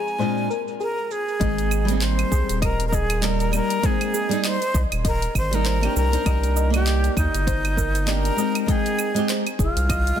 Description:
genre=sunset chillout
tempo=99 BPM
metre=4/4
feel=swing 57% on 16ths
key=Ab lydian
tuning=A4 = 439 Hz
part: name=breathy bright jazz flute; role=melody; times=0.0-10.2 s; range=Eb4 to Ab5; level=-26 LUFS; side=right 1 dB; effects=tape echo
part: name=soft round pluck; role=arpeggios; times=0.0-10.2 s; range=Ab4 to Eb5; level=-33 LUFS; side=left 4 dB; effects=chorus, tape echo
part: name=deep house drum kit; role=drums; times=0.1-10.2 s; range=cabasa, claves, handclaps, hi-hat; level=-29 LUFS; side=right 2 dB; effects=low-pass filter on perc, studio reverb, low-pass filter on hats, low-pass filter on snare
part: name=flamenco guitar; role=accompaniment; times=0.2-10.2 s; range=Bb2 to G5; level=-26 LUFS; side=moving between left 5 dB and right 6 dB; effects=auto-pan
part: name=round analog bass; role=bass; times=1.4-10.1 s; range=Eb1 to Eb2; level=-22 LUFS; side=equal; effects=none
part: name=electronic kick drum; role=drums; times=1.4-10.0 s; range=none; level=-25 LUFS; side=equal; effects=studio reverb
room=little or no reverb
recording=dense, heavily limited modern master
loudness=-19 LUFS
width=side -9 dB against mid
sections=0.0-1.4 A section; 1.4-10.2 B section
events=none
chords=0.2 Bb9; 1.4 Abmaj7; 6.0 Cm7; 8.4 Fm7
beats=0.20 0.81 | 1.41 2.02 2.62 3.23 | 3.83 4.44 5.05 5.65 | 6.26 6.87 7.47 8.08 | 8.68 9.29 9.90

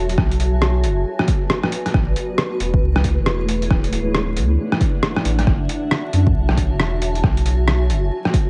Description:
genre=future garage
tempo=136 BPM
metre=4/4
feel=swing 62% on 16ths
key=unclear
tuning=A4 = 439 Hz
part: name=granular cloud pad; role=sustained chords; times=0.0-8.5 s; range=A3 to A5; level=-27 LUFS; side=equal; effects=built-in reverb, sidechain pumping
part: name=warm sub bass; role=bass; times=0.0-8.1 s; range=D1 to F#2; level=-21 LUFS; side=equal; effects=none
part: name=lo-fi sampler-style drum kit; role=drums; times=0.1-8.4 s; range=hi-hat, rim click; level=-24 LUFS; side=equal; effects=overdrive
part: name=electronic kick drum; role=drums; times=0.2-8.4 s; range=none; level=-22 LUFS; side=equal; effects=overdrive
room=light reverb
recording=vinyl crackle, nothing above 10.9 kHz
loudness=-19 LUFS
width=mono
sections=0.0-8.5 A section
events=none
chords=0.2 Bm; 1.9 Amaj7; 3.7 Dadd9; 5.5 F#m7; 7.2 Bm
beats=| 0.18 0.62 1.06 1.50 | 1.94 2.38 2.82 3.27 | 3.71 4.15 4.59 5.03 | 5.47 5.91 6.35 6.79 | 7.24 7.68 8.12

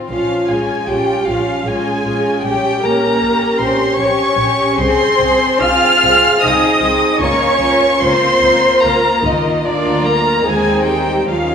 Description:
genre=classical, slow romantic movement for string orchestra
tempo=76 BPM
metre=3/4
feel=uneven beats, rubato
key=unclear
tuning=A4 = 442 Hz
part: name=warm symphonic violin section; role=second line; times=0.0-11.5 s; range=Bb3 to Ab4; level=-18 LUFS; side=left 1 dB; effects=none
part: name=warm chamber violin section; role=melody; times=0.1-11.5 s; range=D5 to F6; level=-16 LUFS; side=left 1 dB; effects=none
part: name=dark symphonic viola section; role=accompaniment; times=0.1-11.5 s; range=D4 to F5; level=-16 LUFS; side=right 1 dB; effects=none
part: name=warm chamber double bass section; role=bass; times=0.1-11.5 s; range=Bb1 to Eb2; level=-25 LUFS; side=right 1 dB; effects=none
part: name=warm symphonic cello section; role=bass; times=0.1-11.5 s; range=D3 to F4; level=-21 LUFS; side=right 1 dB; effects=none
room=wet recital hall reverb, RT60 1.6 s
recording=recorded in a church or concert hall, vinyl crackle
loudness=-12 LUFS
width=side -7 dB against mid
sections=0.0-11.5 A section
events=none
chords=0.1 Bbm7; 2.4 Bbm69; 4.8 Ab/C; 7.2 Bbm/Db; 9.6 Bb/D; 10.4 Ab/Eb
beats=| 0.12 0.89 1.66 | 2.44 3.22 3.99 | 4.76 5.62 6.42 | 7.20 8.02 8.83 | 9.64 10.45 11.29

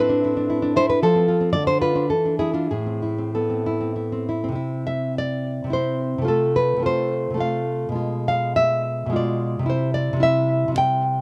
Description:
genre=romantic piece for solo classical guitar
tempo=94-116 BPM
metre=3/4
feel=rubato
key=A minor, C major from 4.6 s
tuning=A4 = 440 Hz
part: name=nylon-string guitar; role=solo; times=0.0-11.2 s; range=A2 to G5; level=-22 LUFS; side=equal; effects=slapback echo
room=light reverb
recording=recorded outdoors, with no room sound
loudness=-22 LUFS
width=mono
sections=0.0-4.6 A section; 4.6-11.2 B section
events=none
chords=0.0 E5/A; 1.0 F; 1.5 Dm; 2.1 E7b9; 2.7 Am; 4.6 C; 6.3 F/C; 8.0 Bdim7; 9.7 C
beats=0.50 | 1.02 1.55 2.10 | 2.69 3.33 3.95 | 4.57 5.15 5.72 | 6.28 6.85 7.41 | 7.98 8.56 9.13 | 9.68 10.23 10.77

